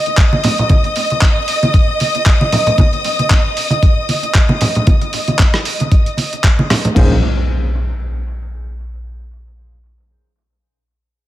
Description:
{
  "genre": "nu-disco, nu disco",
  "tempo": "115 BPM",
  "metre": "4/4",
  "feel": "swing 56% on 16ths",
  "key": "unclear",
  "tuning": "A4 = 440 Hz",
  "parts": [
    { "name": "dark studio string section", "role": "sustained chords", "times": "0.0-7.0 s", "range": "Eb5 to Eb6", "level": "-18 LUFS", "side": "equal", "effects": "sidechain pumping" },
    { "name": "dusty soul sampler-style drum kit", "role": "drums", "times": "0.1-7.1 s", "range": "crash cymbal, handclaps, hi-hat, rim click", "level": "-20 LUFS", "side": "right 1 dB", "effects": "overdrive, small room ambience" },
    { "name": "electronic kick drum", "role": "drums", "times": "0.2-7.1 s", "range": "none", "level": "-11 LUFS", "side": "equal", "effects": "overdrive, small room ambience" },
    { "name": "congas", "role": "percussion", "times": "0.3-6.9 s", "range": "none", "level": "-18 LUFS", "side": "right 1 dB", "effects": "analog delay" },
    { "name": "overdriven tine electric piano", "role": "accompaniment", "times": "6.9-7.2 s", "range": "Bb3 to C5", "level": "-22 LUFS", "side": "left 1 dB", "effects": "fast tremolo, sidechain pumping, analog delay" },
    { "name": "picked electric bass with an envelope filter", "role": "bass", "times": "7.0-7.2 s", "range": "Bb1", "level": "-15 LUFS", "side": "equal", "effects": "none" },
    { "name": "impact", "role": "sound effects", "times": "7.0-9.0 s", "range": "none", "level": "-19 LUFS", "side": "equal", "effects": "none" }
  ],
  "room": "light reverb, digital ambience",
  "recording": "echo-heavy mix",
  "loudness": "-11 LUFS",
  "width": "side -14 dB against mid",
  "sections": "0.0-7.0 A section; 7.0-9.0 B section",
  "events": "none",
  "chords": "0.0 N.C.; 7.0 Bbm11"
}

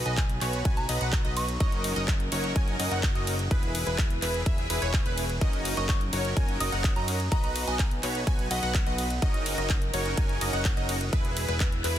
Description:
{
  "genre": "EDM, festival progressive house",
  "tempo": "126 BPM",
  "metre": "4/4",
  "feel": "straight",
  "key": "F# mixolydian",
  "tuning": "A4 = 440 Hz",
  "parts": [
    { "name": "dark studio string section", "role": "sustained chords", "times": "0.0-12.0 s", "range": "E3 to B4", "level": "-38 LUFS", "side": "left 1 dB", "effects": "sidechain pumping" },
    { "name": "wide unison pluck", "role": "arpeggios", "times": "0.0-12.0 s", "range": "B4 to G#5", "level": "-36 LUFS", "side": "equal", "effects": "phaser, cassette tape, sidechain pumping, tape echo" },
    { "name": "supersaw chords", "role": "riff", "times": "0.0-12.0 s", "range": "C#4 to G#5", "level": "-33 LUFS", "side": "right 1 dB", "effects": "sidechain pumping, tape echo" },
    { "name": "fat analog bass", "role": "bass", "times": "0.0-12.0 s", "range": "E1 to F#2", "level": "-32 LUFS", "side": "equal", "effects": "tube saturation, sidechain pumping" },
    { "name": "soft synth bell", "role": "melody", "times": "0.1-1.7, 5.8-8.9 s", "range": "F#5 to D#6", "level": "-36 LUFS", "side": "right 1 dB", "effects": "chorus, vintage 12-bit sampler grit, tape echo" },
    { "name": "big-room dance drum kit", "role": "drums", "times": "0.1-12.0 s", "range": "handclaps, hi-hat, ride cymbal", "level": "-34 LUFS", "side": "equal", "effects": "none" },
    { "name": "electronic kick drum", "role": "drums", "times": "0.2-11.7 s", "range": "none", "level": "-26 LUFS", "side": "equal", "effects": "none" }
  ],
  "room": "little or no reverb",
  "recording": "dense, heavily limited modern master",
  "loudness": "-24 LUFS",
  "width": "side -11 dB against mid",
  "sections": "0.0-12.0 A section",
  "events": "none",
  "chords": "0.0 B; 1.6 F#6; 3.5 E; 5.4 F#6; 7.3 B; 9.2 F#6; 11.1 E"
}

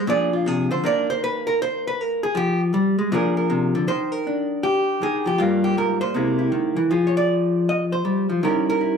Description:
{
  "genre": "solo jazz",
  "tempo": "158 BPM",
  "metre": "4/4",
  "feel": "swing 64% on 8ths",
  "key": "Eb major",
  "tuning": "A4 = 437 Hz",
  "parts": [
    { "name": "vintage hollow-body jazz guitar", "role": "solo", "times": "0.0-9.0 s", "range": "G2 to Eb5", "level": "-19 LUFS", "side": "equal", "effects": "none" }
  ],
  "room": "wet studio reverb, RT60 0.8 s",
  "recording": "band playing live in one room",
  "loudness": "-19 LUFS",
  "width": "side -6 dB against mid",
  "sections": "0.0-3.9 A section; 3.9-9.0 B section",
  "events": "hollow-body jazz guitar solo 0.0-3.9",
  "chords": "0.1 Bb7; 0.8 Eb5; 2.4 Fm; 3.1 Bb7; 3.9 Ebmaj7; 5.4 Gm7; 6.1 C7alt; 6.9 Fm; 8.4 Eb7b9"
}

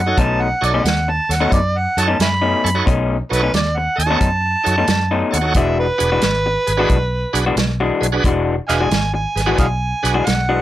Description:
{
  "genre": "electric blues shuffle",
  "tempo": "89 BPM",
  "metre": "4/4",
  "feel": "swing 68% on 8ths",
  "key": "B mixolydian",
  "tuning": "A4 = 441 Hz",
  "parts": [
    { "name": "overdriven harmonica", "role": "second line", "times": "0.0-10.6 s", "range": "B4 to B5", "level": "-20 LUFS", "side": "right 2 dB", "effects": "none" },
    { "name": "vintage muted fingered electric bass", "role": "bass", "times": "0.0-10.6 s", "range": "E1 to F#2", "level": "-21 LUFS", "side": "equal", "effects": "none" },
    { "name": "bright tonewheel organ", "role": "accompaniment", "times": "0.1-10.1 s", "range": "D4 to D#5", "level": "-21 LUFS", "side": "right 4 dB", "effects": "slow rotary speaker, overdrive" },
    { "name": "electric guitar through a small old amp", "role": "riff", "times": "0.1-10.6 s", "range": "B2 to F#4", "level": "-20 LUFS", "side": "left 4 dB", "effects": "none" },
    { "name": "warm soul drum kit", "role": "drums", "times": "0.2-10.5 s", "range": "hi-hat, kick drum, snare drum", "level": "-19 LUFS", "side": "right 1 dB", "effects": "none" }
  ],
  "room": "little or no reverb",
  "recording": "none",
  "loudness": "-15 LUFS",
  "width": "side -13 dB against mid",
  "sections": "0.0-10.6 A section",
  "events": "harmonica solo 0.0-10.6",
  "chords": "0.0 B9; 5.6 E9"
}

